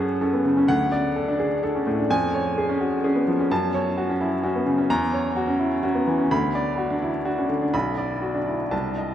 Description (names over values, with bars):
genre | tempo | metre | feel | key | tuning
classical, virtuoso piano study | 127 BPM | 3/4 | rubato | F# minor | A4 = 441 Hz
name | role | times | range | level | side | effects
clear baby grand piano | solo | 0.0-9.1 s | B1 to B5 | -21 LUFS | equal | none
room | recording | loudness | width
wet cathedral reverb, RT60 6.2 s | in a vast, echoing space | -21 LUFS | side -10 dB against mid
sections
0.0-9.1 A section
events
none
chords
0.0 F#m; 0.7 D; 2.1 C#/E#; 3.5 F#m; 4.9 F#7/E; 6.3 Bm/D; 7.7 Bm